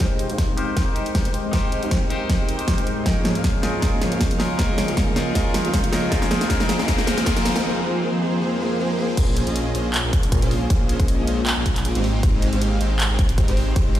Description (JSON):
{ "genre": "future bass", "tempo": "157 BPM", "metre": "4/4", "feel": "swing 54% on 16ths, half-time", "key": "unclear", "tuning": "A4 = 444 Hz", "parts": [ { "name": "barky tine electric piano", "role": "accompaniment", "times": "0.0-9.2 s", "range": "Eb4 to C5", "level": "-27 LUFS", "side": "left 2 dB", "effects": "overdrive, phaser, sidechain pumping, dub echo" }, { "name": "ethereal airy pad", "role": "sustained chords", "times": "0.0-14.0 s", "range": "F2 to G4", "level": "-32 LUFS", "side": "equal", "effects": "ensemble chorus, built-in reverb, phaser, sidechain pumping" }, { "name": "soft supersaw", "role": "riff", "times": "0.0-14.0 s", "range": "F3 to F5", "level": "-25 LUFS", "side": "equal", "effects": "sidechain pumping, low-pass filter, dub echo" }, { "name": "big-room dance drum kit", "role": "drums", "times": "0.0-14.0 s", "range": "crash cymbal, handclaps, hi-hat, snare drum", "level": "-25 LUFS", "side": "equal", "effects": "none" }, { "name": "electronic kick drum", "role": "drums", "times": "0.0-13.8 s", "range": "none", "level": "-21 LUFS", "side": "equal", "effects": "none" }, { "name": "riser and swell", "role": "sound effects", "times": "4.7-9.2 s", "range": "none", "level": "-33 LUFS", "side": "left 1 dB", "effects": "none" }, { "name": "wide detuned saw bass", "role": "bass", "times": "9.2-14.0 s", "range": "Ab1 to Bb1", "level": "-23 LUFS", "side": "equal", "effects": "chorus, sidechain pumping" } ], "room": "light reverb", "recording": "played on a big sound system in a bare room, stone room reverb", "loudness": "-18 LUFS", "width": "side -12 dB against mid", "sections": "0.0-9.2 A section; 9.2-14.0 B section", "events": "build-up 0.0-9.2; drum fill 0.0-7.6; filter sweep on supersaw synth 0.0-9.2; break 7.6-9.2; swell 8.5-9.2; drop 9.2-14.0", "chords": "0.0 Abmaj7; 3.1 Db6; 6.1 Fm7; 9.2 Bbm9; 12.0 Abmaj7" }